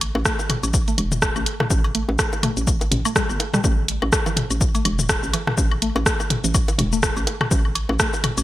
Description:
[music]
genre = minimal techno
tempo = 124 BPM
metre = 4/4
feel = swing 57% on 16ths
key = unclear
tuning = A4 = 444 Hz
[part]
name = hollow knocking FM bass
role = bass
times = 0.0-8.4 s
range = E1 to A1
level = -24 LUFS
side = equal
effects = sidechain pumping
[part]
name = techno drum kit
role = drums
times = 0.0-8.4 s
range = hi-hat, rim click, shaker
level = -23 LUFS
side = equal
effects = gated reverb
[part]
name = electronic cowbell, bongos, woodblock and toms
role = percussion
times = 0.0-8.4 s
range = none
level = -26 LUFS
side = left 2 dB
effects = gated reverb, digital delay
[part]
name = mallet-like synth pluck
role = riff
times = 0.3-8.0 s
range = E3 to A3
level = -29 LUFS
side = equal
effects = chorus, sidechain pumping, digital delay
[part]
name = electronic kick drum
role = drums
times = 0.3-8.1 s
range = none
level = -23 LUFS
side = equal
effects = none
[sound]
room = light reverb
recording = bright 1980s-style digital production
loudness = -18 LUFS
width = side -15 dB against mid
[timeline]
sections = 0.0-8.4 A section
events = none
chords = 0.0 A5

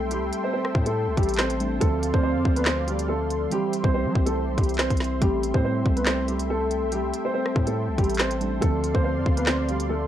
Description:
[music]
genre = hip hop, drill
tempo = 141 BPM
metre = 4/4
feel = half-time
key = A minor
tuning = A4 = 440 Hz
[part]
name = dark grand piano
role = melody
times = 0.0-10.1 s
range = G3 to C5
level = -26 LUFS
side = left 1 dB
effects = low-pass filter
[part]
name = muted felt-like synth keys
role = accompaniment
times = 0.0-10.1 s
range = D3 to D4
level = -31 LUFS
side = right 4 dB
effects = chorus, low-pass filter
[part]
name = warm analog pad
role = sustained chords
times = 0.0-10.1 s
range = G4 to C6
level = -33 LUFS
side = right 1 dB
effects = chorus
[part]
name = distorted 808-style bass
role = bass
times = 0.0-10.1 s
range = A1 to G3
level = -29 LUFS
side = equal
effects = distortion
[part]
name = drill drum kit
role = drums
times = 0.1-9.9 s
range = handclaps, hi-hat, kick drum, rim click, snare drum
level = -24 LUFS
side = equal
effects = none
[sound]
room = digital ambience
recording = dry, gritty hardware recording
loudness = -21 LUFS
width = side -11 dB against mid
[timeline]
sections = 0.0-10.1 A section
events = none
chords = 0.0 Am7; 1.8 Dm7; 3.5 C; 5.2 Am7; 8.6 Dm7

